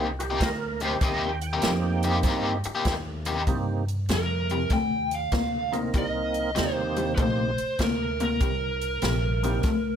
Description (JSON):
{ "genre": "electric blues shuffle", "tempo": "97 BPM", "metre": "4/4", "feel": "swing 67% on 8ths", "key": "C minor", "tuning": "A4 = 441 Hz", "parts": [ { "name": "overdriven tonewheel organ", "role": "accompaniment", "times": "0.0-9.6 s", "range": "Bb3 to G5", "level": "-30 LUFS", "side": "right 6 dB", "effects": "slow rotary speaker, chorus vibrato" }, { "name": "biting overdriven guitar", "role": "riff", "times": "0.0-10.0 s", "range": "C3 to G4", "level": "-29 LUFS", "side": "left 4 dB", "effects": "harmonic tremolo" }, { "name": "upright bass", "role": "bass", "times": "0.0-10.0 s", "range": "Bb1 to G2", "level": "-30 LUFS", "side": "equal", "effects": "none" }, { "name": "swinging big-band drum kit", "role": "drums", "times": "0.2-9.8 s", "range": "hi-hat, kick drum, snare drum", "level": "-30 LUFS", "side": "equal", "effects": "none" }, { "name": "lead guitar through a small cranked amp", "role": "melody", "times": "4.1-10.0 s", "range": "Bb4 to G5", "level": "-28 LUFS", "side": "right 2 dB", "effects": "overdrive" } ], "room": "moderate small room reverb, RT60 0.5 s", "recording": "none", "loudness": "-23 LUFS", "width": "side -8 dB against mid", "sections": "0.0-3.5 A section; 3.5-10.0 B section", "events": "none", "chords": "0.0 Cm7" }